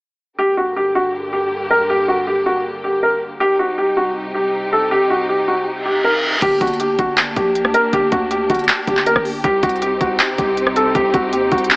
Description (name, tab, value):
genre	hip hop, trap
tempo	159 BPM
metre	4/4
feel	half-time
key	G harmonic minor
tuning	A4 = 440 Hz
part	felt-muted upright piano	melody	0.4-11.7 s	F#4 to Bb4	-16 LUFS	equal	low-pass filter
part	dark studio string section	sustained chords	0.4-11.8 s	C2 to G4	-23 LUFS	equal	none
part	reverse cymbal	sound effects	5.8-6.4 s	none	-20 LUFS	equal	none
part	hard-hitting 808-style bass	bass	6.4-11.7 s	G1 to Eb2	-26 LUFS	equal	none
part	trap drum kit	drums	6.4-11.8 s	crash cymbal, handclaps, hi-hat, kick drum, rim click	-19 LUFS	equal	vintage 12-bit sampler grit
room	light reverb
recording	AM radio sound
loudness	-15 LUFS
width	side -30 dB against mid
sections	0.4-6.4 A section; 6.4-11.8 B section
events	reverse cymbal 5.8-6.4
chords	0.4 Gm; 3.4 Cm; 6.4 Gm; 9.4 Cm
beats	| 0.38 0.76 1.14 1.52 | 1.89 2.27 2.65 3.02 | 3.40 3.78 4.16 4.54 | 4.91 5.29 5.67 6.04 | 6.42 6.80 7.18 7.55 | 7.93 8.31 8.69 9.06 | 9.44 9.82 10.20 10.57 | 10.95 11.33 11.71